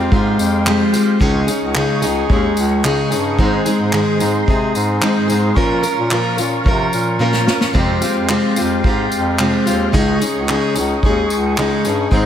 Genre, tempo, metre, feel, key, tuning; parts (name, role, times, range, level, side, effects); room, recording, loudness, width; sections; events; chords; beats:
acoustic pop; 110 BPM; 4/4; straight; A4 = 440 Hz
picked plugged-in steel-string acoustic guitar; accompaniment; 0.0-12.3 s; F2 to Bb4; -16 LUFS; left 1 dB
tonewheel organ; sustained chords; 0.0-12.3 s; Ab3 to Db6; -26 LUFS; equal; overdrive, chorus vibrato, slow rotary speaker
warm bass clarinet; bass; 0.0-12.3 s; Db2 to C3; -21 LUFS; equal
unplugged drum kit; drums; 0.1-12.2 s; handclaps, kick drum, snare drum, tambourine; -20 LUFS; equal
moderate lush hall reverb, RT60 2.2 s; big arena sound; -14 LUFS; side -9 dB against mid
0.0-12.3 A section
drum fill 7.2-7.8
0.0 Fmadd9; 1.2 Dbsus2; 3.4 Ab; 5.6 Bbm; 7.8 Fmadd9; 9.9 Dbsus2
0.12 0.67 | 1.21 1.76 2.30 2.85 | 3.39 3.94 4.49 5.03 | 5.58 6.12 6.67 7.21 | 7.75 8.30 8.85 9.39 | 9.94 10.48 11.03 11.57 | 12.12